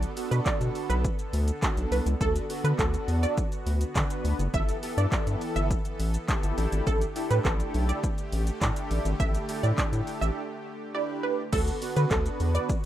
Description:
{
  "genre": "dance-pop",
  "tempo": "103 BPM",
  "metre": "4/4",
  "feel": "straight",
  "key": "D major",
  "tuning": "A4 = 440 Hz",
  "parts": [
    { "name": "big bright polysynth", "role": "accompaniment", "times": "0.0-12.7 s", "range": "B3 to B4", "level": "-34 LUFS", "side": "right 1 dB", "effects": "lush chorus, sidechain pumping" },
    { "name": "soft supersaw", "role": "sustained chords", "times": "0.0-12.9 s", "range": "D3 to A4", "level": "-38 LUFS", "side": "equal", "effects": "sidechain pumping" },
    { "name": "round analog bass", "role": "bass", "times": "0.0-12.6 s", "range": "F#1 to D3", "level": "-26 LUFS", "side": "equal", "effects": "sidechain pumping" },
    { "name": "punchy analog drum machine", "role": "drums", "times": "0.0-12.8 s", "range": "crash cymbal, handclaps, hi-hat, kick drum, shaker", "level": "-29 LUFS", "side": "equal", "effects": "none" },
    { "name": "wide unison pluck", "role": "melody", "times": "0.3-12.9 s", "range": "A4 to E5", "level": "-32 LUFS", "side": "right 4 dB", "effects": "wide subtle chorus" }
  ],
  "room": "digital ambience",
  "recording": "rough home demo mix",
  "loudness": "-25 LUFS",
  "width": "side -12 dB against mid",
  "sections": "0.0-11.5 A section; 11.5-12.9 A section",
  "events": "drop 0.0-11.5, 11.5-12.9; break 10.4-11.5",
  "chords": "0.0 Bm7; 2.2 D6; 4.5 G69; 6.6 A7sus4; 11.5 D6"
}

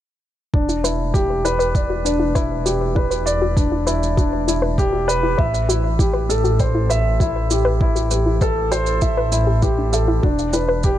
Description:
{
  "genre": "piano and strings electronica",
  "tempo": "99 BPM",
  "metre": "4/4",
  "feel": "straight",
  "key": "E minor",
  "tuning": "A4 = 441 Hz",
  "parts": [
    { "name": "dark upright piano", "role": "riff", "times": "0.5-11.0 s", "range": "D4 to E5", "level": "-21 LUFS", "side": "equal", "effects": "low-pass filter, ping-pong delay" },
    { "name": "dark detuned saw bass", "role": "bass", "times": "0.5-11.0 s", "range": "E1 to A1", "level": "-22 LUFS", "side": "equal", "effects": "tube saturation, sidechain pumping" },
    { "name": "electronic kick drum", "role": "drums", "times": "0.5-11.0 s", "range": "none", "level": "-19 LUFS", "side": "equal", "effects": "none" },
    { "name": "soft round pluck", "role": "arpeggios", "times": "0.7-10.8 s", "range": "D4 to E5", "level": "-25 LUFS", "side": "left 3 dB", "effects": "chorus, cassette tape, sidechain pumping, ping-pong delay" },
    { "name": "shaker", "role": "drums", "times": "0.7-11.0 s", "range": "none", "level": "-29 LUFS", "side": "right 5 dB", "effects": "none" }
  ],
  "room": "light reverb, digital ambience",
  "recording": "none",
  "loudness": "-16 LUFS",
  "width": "side -12 dB against mid",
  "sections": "0.5-11.0 A section",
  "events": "filter sweep on upright piano 0.5-11.0",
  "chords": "0.5 Em7; 5.4 Am7; 10.2 Em7"
}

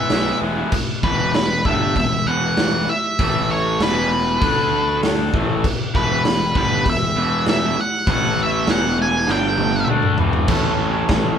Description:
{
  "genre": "garage rock duo or trio",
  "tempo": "98 BPM",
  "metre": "4/4",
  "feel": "straight",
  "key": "unclear",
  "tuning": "A4 = 439 Hz",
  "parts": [
    { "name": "octave-fuzz lead guitar", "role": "melody", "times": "0.0-9.9 s", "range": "B4 to G#5", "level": "-21 LUFS", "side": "right 1 dB", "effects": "distortion" },
    { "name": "raw garage guitar", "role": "riff", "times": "0.0-11.4 s", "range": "E2 to E4", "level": "-22 LUFS", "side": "equal", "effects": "overdrive" },
    { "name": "fuzz picked electric bass", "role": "bass", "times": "0.1-11.3 s", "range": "E1 to D2", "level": "-24 LUFS", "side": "equal", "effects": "overdrive" },
    { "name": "raw garage drum kit", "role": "drums", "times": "0.1-11.2 s", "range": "crash cymbal, hi-hat, kick drum, snare drum, toms", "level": "-21 LUFS", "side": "equal", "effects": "none" }
  ],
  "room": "light reverb",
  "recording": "band playing live in one room",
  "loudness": "-16 LUFS",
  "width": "side -8 dB against mid",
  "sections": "0.7-10.5 A section",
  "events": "drum fill 9.3-10.5",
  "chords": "0.0 E; 0.7 E5; 3.2 A5; 3.8 E5; 4.4 D5; 5.3 E5; 8.1 A5; 8.7 E; 9.3 G5; 9.9 E5; 10.5 A"
}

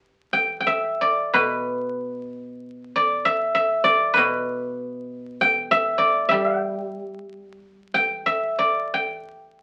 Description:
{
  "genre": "chinese traditional, Chinese solo plucked strings",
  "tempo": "82-100 BPM",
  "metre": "4/4",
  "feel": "rubato",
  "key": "G gong mode",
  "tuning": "A4 = 439 Hz",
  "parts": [
    { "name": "guzheng", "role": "solo", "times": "0.0-9.6 s", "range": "B2 to G5", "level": "-22 LUFS", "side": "equal", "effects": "none" }
  ],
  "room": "wet studio reverb, RT60 0.6 s",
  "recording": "very old 78 rpm record, vinyl crackle",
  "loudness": "-22 LUFS",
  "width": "mono",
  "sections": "0.0-9.6 A section",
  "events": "none",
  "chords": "none"
}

